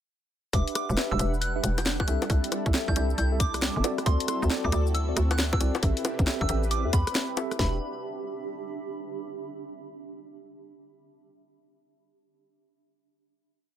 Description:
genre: UK garage, two-step garage.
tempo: 136 BPM.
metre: 4/4.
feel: swing 64% on 16ths.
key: E minor.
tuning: A4 = 441 Hz.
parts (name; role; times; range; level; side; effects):
soft synth bell; melody; 0.5-7.8 s; B5 to G6; -35 LUFS; right 2 dB; chorus, phaser, tape echo.
warm analog pad; sustained chords; 0.5-7.8 s; C4 to F#5; -38 LUFS; equal; chorus, sidechain pumping.
mellow tine electric piano; stabs; 0.5-7.8 s; C4 to E5; -33 LUFS; equal; medium stereo tremolo.
hollow knocking FM bass; bass; 0.5-7.8 s; E1 to E2; -27 LUFS; equal; none.
garage drum kit; drums; 0.5-7.7 s; kick drum, snare drum; -26 LUFS; equal; none.
garage drum kit; drums; 0.5-7.6 s; bongos, hi-hat, rim click, shaker, snare drum; -30 LUFS; left 1 dB; none.
granular cloud pad; texture; 1.4-9.3 s; G3 to B5; -38 LUFS; right 3 dB; built-in reverb, sidechain pumping.
room: little or no reverb.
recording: none.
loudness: -24 LUFS.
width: side -11 dB against mid.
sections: 0.5-7.6 drop; 7.6-9.4 final chord.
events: drop 0.5-7.6.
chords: 0.5 Em7; 2.1 C6; 3.8 D7; 5.8 Am7; 7.6 Em7.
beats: | 0.53 0.97 1.42 1.86 | 2.30 2.74 3.18 3.62 | 4.06 4.50 4.95 5.39 | 5.83 6.27 6.71 7.15 | 7.59 8.03 8.47 8.91.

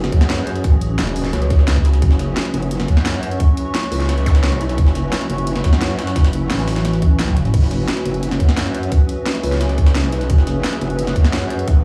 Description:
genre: dark technical drum and bass.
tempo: 174 BPM.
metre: 4/4.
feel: straight.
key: unclear.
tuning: A4 = 440 Hz.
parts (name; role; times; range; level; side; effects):
swarming drone; sustained chords; 0.0-11.8 s; F#3 to G#4; -29 LUFS; equal; built-in reverb, vintage 12-bit sampler grit, sidechain pumping.
metallic wobble bass; bass; 0.0-11.7 s; F#1 to F#2; -22 LUFS; equal; distortion, chorus, tube saturation, sidechain pumping.
drum and bass drum kit; drums; 0.0-11.7 s; crash cymbal, hi-hat, snare drum, toms; -25 LUFS; equal; overdrive.
jungle sampler-style drum kit; drums; 0.0-11.8 s; hi-hat, snare drum; -36 LUFS; equal; none.
warbly tape-like pad; texture; 0.0-11.8 s; F#4 to C#6; -30 LUFS; equal; chorus, built-in reverb, phaser, sidechain pumping.
electronic kick drum; drums; 0.1-11.7 s; none; -16 LUFS; equal; none.
pulsing pluck wobble bass; bass; 0.6-2.0, 6.5-7.5, 11.7-11.8 s; E1 to C#2; -20 LUFS; equal; chorus.
zap; sound effects; 4.3 s; none; -35 LUFS; equal; none.
room: digital ambience.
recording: played on a big sound system in a bare room, large studio reverb, small room ambience.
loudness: -17 LUFS.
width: mono.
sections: 0.0-11.8 A section.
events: drum fill 7.3.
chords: 0.0 F#5.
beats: 0.30 | 0.64 0.99 1.33 1.68 | 2.02 2.37 2.71 3.06 | 3.40 3.75 4.09 4.43 | 4.78 5.12 5.47 5.81 | 6.16 6.50 6.85 7.19 | 7.54 7.88 8.23 8.57 | 8.92 9.26 9.61 9.95 | 10.30 10.64 10.99 11.33 | 11.68.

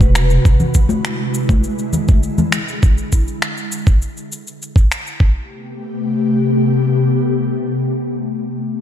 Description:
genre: sunset chillout.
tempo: 101 BPM.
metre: 4/4.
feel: straight.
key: A dorian.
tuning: A4 = 440 Hz.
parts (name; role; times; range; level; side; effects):
ethereal airy pad; sustained chords; 0.0-8.2 s; C3 to B4; -18 LUFS; left 1 dB; ensemble chorus, built-in reverb, phaser.
electronic kick drum; drums; 0.0-5.3 s; none; -12 LUFS; equal; overdrive.
electronic shaker and finger snaps; drums; 0.0-5.2 s; none; -23 LUFS; left 1 dB; overdrive.
congas; percussion; 0.0-2.5 s; none; -21 LUFS; left 2 dB; none.
room: moderate concert hall reverb, RT60 2.2 s.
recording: dark, warm production.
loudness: -14 LUFS.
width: side -10 dB against mid.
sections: 0.0-5.2 A section; 5.2-7.6 B section.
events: none.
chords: 0.4 E7; 5.2 Am9.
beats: | 0.45 1.04 1.64 2.23 | 2.82 3.42 4.01 4.61 | 5.20 5.79 6.39 6.98.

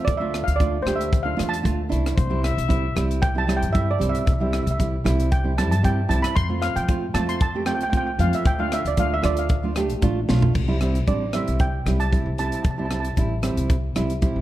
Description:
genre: calypso.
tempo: 115 BPM.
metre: 4/4.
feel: straight.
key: C major.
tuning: A4 = 440 Hz.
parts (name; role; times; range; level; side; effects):
steel pan; melody; 0.0-13.1 s; C5 to C6; -26 LUFS; right 2 dB; none.
nylon-string guitar; accompaniment; 0.0-14.4 s; G3 to G4; -26 LUFS; right 3 dB; none.
upright bass; bass; 0.1-14.4 s; A1 to G2; -24 LUFS; equal; none.
tight funk drum kit; drums; 0.1-14.4 s; crash cymbal, hi-hat, kick drum, rim click, snare drum, toms; -24 LUFS; equal; none.
warm trumpet; second line; 2.2-3.1 s; C5 to E5; -30 LUFS; left 8 dB; none.
room: light reverb.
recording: dark, warm production.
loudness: -20 LUFS.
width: side -14 dB against mid.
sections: 0.0-10.6 A section; 10.6-14.4 B section.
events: steel pan solo 0.0-10.6; drum fill 10.3.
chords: 0.1 Dm; 2.2 C6; 6.4 F; 8.5 Dm; 10.6 C6.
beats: | 0.08 0.60 1.13 1.65 | 2.17 2.70 3.22 3.74 | 4.27 4.79 5.31 5.84 | 6.36 6.88 7.41 7.93 | 8.45 8.98 9.50 10.03 | 10.55 11.07 11.60 12.12 | 12.65 13.17 13.70 14.22.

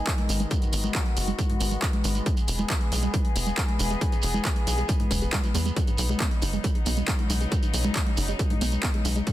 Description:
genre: uplifting trance.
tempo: 137 BPM.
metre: 4/4.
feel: straight.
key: unclear.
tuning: A4 = 439 Hz.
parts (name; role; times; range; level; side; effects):
rich chamber string section; sustained chords; 0.0-9.3 s; C#3 to G#4; -34 LUFS; left 2 dB; sidechain pumping, low-pass filter.
analog pluck; arpeggios; 0.0-9.3 s; G#2 to G#4; -34 LUFS; right 4 dB; chorus, sidechain pumping, tape echo.
tight sequencer bass; bass; 0.0-9.2 s; E1 to E2; -27 LUFS; equal; sidechain pumping.
electronic kick drum; drums; 0.1-9.3 s; none; -26 LUFS; equal; overdrive.
techno drum kit; drums; 0.1-9.3 s; congas, handclaps, hi-hat; -30 LUFS; left 2 dB; overdrive, sidechain pumping on hats, sidechain pumping on cymbals, sidechain pumping on perc.
shekere; percussion; 0.1-9.3 s; none; -36 LUFS; right 5 dB; none.
room: little or no reverb.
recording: dense, heavily limited modern master.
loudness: -23 LUFS.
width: side -14 dB against mid.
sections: 0.0-9.3 A section.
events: filter sweep on synth arpeggio sound 0.0-9.3; filter sweep on string section 0.0-9.3.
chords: 0.0 G#m; 2.3 E; 5.8 Badd9.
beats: 0.07 | 0.51 0.95 1.39 1.82 | 2.26 2.70 3.14 3.58 | 4.01 4.45 4.89 5.33 | 5.77 6.20 6.64 7.08 | 7.52 7.96 8.39 8.83 | 9.27.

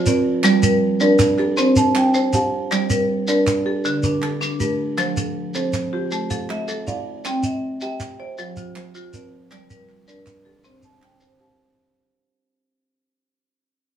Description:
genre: southern african traditional, mbira-style interlocking cycle.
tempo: 106 BPM (dotted quarters).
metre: 12/8.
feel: straight.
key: G equiheptatonic.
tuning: A4 = 440 Hz.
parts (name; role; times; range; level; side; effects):
buzzing kalimba; arpeggios; 0.0-12.0 s; D3 to A5-29c; -21 LUFS; right 4 dB; none.
marimba with hard mallets; arpeggios; 0.0-12.0 s; D3 to A5-29c; -22 LUFS; left 3 dB; none.
shekere; percussion; 0.1-11.4 s; none; -24 LUFS; right 1 dB; none.
group handclap; percussion; 0.4-11.5 s; none; -31 LUFS; right 3 dB; none.
room: wet studio reverb, RT60 0.7 s.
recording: band playing live in one room, small room ambience.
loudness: -17 LUFS.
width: side -10 dB against mid.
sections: 0.0-11.8 A section.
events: fade-out 0.9-11.8.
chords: 0.4 Gm; 1.6 C5; 2.7 Gm; 3.9 D5; 5.0 F; 6.1 A5; 7.3 C; 8.4 F5; 9.5 Gm; 10.6 C5.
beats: | 0.44 1.01 1.58 2.15 | 2.71 3.28 3.85 4.42 | 4.99 5.55 6.12 6.68 | 7.25 7.82 8.38 8.95 | 9.51 10.08 10.64 11.21.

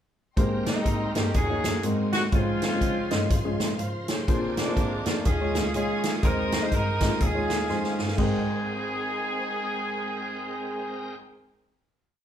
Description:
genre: uptempo gospel.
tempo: 123 BPM.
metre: 4/4.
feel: swing 60% on 8ths.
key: Ab major.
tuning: A4 = 440 Hz.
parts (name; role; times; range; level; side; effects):
warm baby grand piano; accompaniment; 0.4-11.2 s; Ab1 to G5; -29 LUFS; left 1 dB; none.
bright tonewheel organ; sustained chords; 0.4-11.2 s; Db3 to G5; -37 LUFS; right 2 dB; slow rotary speaker, chorus vibrato.
warm studio string section; sustained chords; 0.4-11.2 s; Ab4 to Eb6; -42 LUFS; left 1 dB; none.
rich cello; bass; 0.4-11.2 s; Db2 to Db3; -32 LUFS; equal; none.
swinging big-band drum kit; drums; 0.4-8.3 s; crash cymbal, hi-hat, kick drum, snare drum; -27 LUFS; equal; none.
clear horn section; melody; 0.7-11.2 s; F3 to C5; -29 LUFS; equal; none.
room: moderate large studio reverb, RT60 0.9 s.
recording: band playing live in one room.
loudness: -24 LUFS.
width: side -9 dB against mid.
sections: 0.4-8.2 breakdown; 8.2-12.1 final chord.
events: drum fill 7.7-8.2.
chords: 0.4 Abmaj9; 1.3 Ebm7; 1.8 Ab9; 2.3 Dbmaj7; 4.3 Bb9; 5.3 Eb9sus4; 6.2 Ab/Eb; 7.2 Eb9sus4; 8.2 Abmaj9.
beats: | 0.37 0.86 1.35 1.84 | 2.33 2.81 3.30 3.79 | 4.28 4.77 5.25 5.74 | 6.23 6.72 7.21 7.69 | 8.18 8.67 9.16 9.65 | 10.14 10.63 11.12.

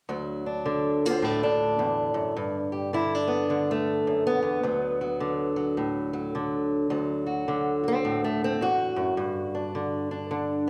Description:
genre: acoustic country blues, solo or duo.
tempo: 106 BPM.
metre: 4/4.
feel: swing 63% on 8ths.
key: D mixolydian.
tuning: A4 = 440 Hz.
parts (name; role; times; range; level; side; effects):
fingerpicked old ladder-braced acoustic guitar; solo; 0.1-10.7 s; D2 to G4; -27 LUFS; equal; none.
room: wet recital hall reverb, RT60 1.7 s.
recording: recorded in a church or concert hall.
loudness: -27 LUFS.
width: mono.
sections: 0.1-10.7 A section.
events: steel-string acoustic guitar solo 0.1-10.7.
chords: 0.1 D; 2.4 G; 4.6 D; 9.2 G5.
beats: | 0.09 0.66 1.23 1.79 | 2.36 2.93 3.50 4.07 | 4.63 5.20 5.77 6.34 | 6.91 7.48 8.05 8.62 | 9.19 9.76 10.33.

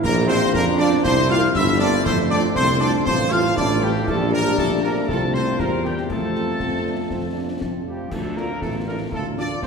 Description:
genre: military-style march for wind band.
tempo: 119 BPM.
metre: 2/4.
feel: straight.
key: F major.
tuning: A4 = 440 Hz.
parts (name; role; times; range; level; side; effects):
bright trumpet section; melody; 0.0-9.7 s; G4 to F5; -25 LUFS; right 1 dB; none.
bright piccolo; second line; 0.0-7.6 s; G5 to F6; -28 LUFS; left 3 dB; none.
clear euphonium; second line; 0.0-9.7 s; G3 to F4; -26 LUFS; right 2 dB; none.
mellow trombone section; sustained chords; 0.0-9.7 s; G3 to F4; -28 LUFS; right 1 dB; none.
mellow tuba; bass; 0.0-9.7 s; G1 to F2; -23 LUFS; right 1 dB; none.
clash cymbals, concert bass drum and concert snare drum; drums; 0.0-9.7 s; none; -30 LUFS; left 2 dB; none.
mellow French horn section; accompaniment; 0.3-9.5 s; F3 to G4; -28 LUFS; left 3 dB; none.
room: wet church reverb, RT60 3.6 s.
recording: recorded in a church or concert hall.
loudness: -18 LUFS.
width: side -5 dB against mid.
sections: 0.0-8.1 A section; 8.1-9.7 A section.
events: none.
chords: 0.0 Bb; 1.0 C7; 2.1 F; 3.1 F/A; 4.1 Gm/Bb; 5.1 F/C; 5.6 C7/E; 6.1 F; 8.1 Dm.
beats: | 0.04 0.54 | 1.05 1.55 | 2.06 2.56 | 3.07 3.57 | 4.08 4.58 | 5.09 5.59 | 6.10 6.60 | 7.11 7.61 | 8.12 8.62 | 9.13 9.63.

